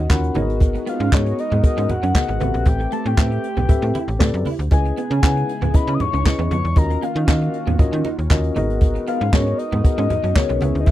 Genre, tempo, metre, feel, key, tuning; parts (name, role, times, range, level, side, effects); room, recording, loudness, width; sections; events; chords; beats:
early-eighties boogie funk; 117 BPM; 4/4; straight; A4 = 440 Hz
soft octave-layered synth lead; melody; 0.0-10.9 s; C#5 to D#6; -25 LUFS; left 4 dB; chorus, phaser, slapback echo
mellow tine electric piano; accompaniment; 0.0-10.9 s; B3 to B5; -25 LUFS; left 3 dB
chorused pulse-width pad; sustained chords; 0.0-10.9 s; C#3 to A#4; -32 LUFS; right 1 dB
slap-like FM bass; bass; 0.0-10.9 s; G#1 to D#3; -21 LUFS; equal
jazz brush drum kit; drums; 0.1-10.9 s; handclaps, hi-hat, kick drum, snare drum; -16 LUFS; equal
congas; percussion; 0.1-10.9 s; -27 LUFS; right 2 dB
electric guitar at the edge of break-up; riff; 0.4-10.7 s; A3 to E4; -28 LUFS; right 6 dB; ensemble chorus
little or no reverb; dry, close 1970s-style studio recording; -16 LUFS; side -14 dB against mid
0.0-10.9 A section
tine electric piano fill 0.0-0.6
0.4 G#m9; 2.4 Am9; 4.7 C#m9; 6.8 D#m9; 8.6 G#m9
0.10 | 0.61 1.13 1.64 2.15 | 2.66 3.18 3.69 4.20 | 4.72 5.23 5.74 6.25 | 6.77 7.28 7.79 8.31 | 8.82 9.33 9.84 10.36 | 10.87